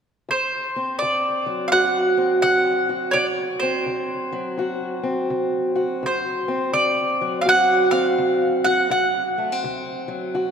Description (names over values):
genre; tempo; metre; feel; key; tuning
acoustic country blues, solo or duo; 84 BPM; 4/4; swing 63% on 8ths; D mixolydian; A4 = 439 Hz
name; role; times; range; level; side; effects
mandolin; melody; 0.3-9.6 s; C5 to F#5; -21 LUFS; right 1 dB; none
fingerpicked steel-string acoustic guitar; accompaniment; 0.3-10.5 s; D2 to F#4; -22 LUFS; equal; none
room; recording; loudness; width
wet cathedral reverb, RT60 4.5 s; recorded in a church or concert hall; -19 LUFS; side -7 dB against mid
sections
0.3-10.5 A section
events
none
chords
0.3 D7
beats
| 0.29 1.01 1.73 2.44 | 3.16 3.88 4.60 5.31 | 6.03 6.75 7.46 8.18 | 8.90 9.62 10.34